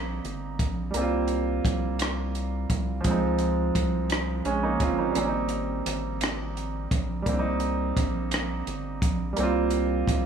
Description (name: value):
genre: slow six-eight R&B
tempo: 57 BPM (dotted quarters)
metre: 6/8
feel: straight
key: unclear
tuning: A4 = 440 Hz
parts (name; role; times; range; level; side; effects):
- clear concert grand piano; accompaniment; 0.0-10.3 s; F3 to F4; -27 LUFS; right 3 dB; none
- rubbery square bass; bass; 0.0-10.3 s; G1 to Db2; -31 LUFS; equal; none
- compact cocktail drum kit; drums; 0.2-10.2 s; hi-hat, kick drum, rim click; -29 LUFS; equal; none
room: light reverb, small room ambience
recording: studio reverb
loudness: -24 LUFS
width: side -7 dB against mid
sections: 0.0-10.3 A section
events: none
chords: 0.0 Cm7; 3.0 Dbmaj9; 5.2 Abmaj9; 7.3 Cm7